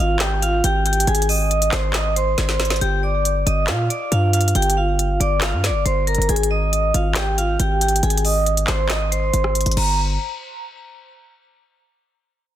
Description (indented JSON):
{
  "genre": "hip hop, trap",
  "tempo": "138 BPM",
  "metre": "4/4",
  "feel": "half-time",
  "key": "unclear",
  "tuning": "A4 = 440 Hz",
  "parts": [
    { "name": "vibraphone with medium hard mallets", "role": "melody", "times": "0.0-10.0 s", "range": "F4 to Eb6", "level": "-21 LUFS", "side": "right 1 dB", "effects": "ping-pong delay" },
    { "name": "hard-hitting 808-style bass", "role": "bass", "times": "0.0-10.2 s", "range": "G1 to Bb2", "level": "-20 LUFS", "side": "equal", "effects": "none" },
    { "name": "trap drum kit", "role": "drums", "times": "0.2-9.9 s", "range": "crash cymbal, handclaps, hi-hat, rim click, snare drum", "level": "-24 LUFS", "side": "equal", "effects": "none" }
  ],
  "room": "little or no reverb",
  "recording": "dense, heavily limited modern master",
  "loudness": "-17 LUFS",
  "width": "side -12 dB against mid",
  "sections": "0.0-2.8 A section; 2.8-9.8 B section; 9.8-11.5 C section",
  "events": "drum fill 2.4-2.8",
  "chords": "0.0 Ab; 2.8 G7(no3); 6.3 Ab; 9.8 N.C.",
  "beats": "0.20 0.64 | 1.07 1.51 1.94 2.38 | 2.81 3.25 3.68 4.12 | 4.55 4.99 5.42 5.86 | 6.29 6.73 7.16 7.60 | 8.03 8.46 8.90 9.34 | 9.77"
}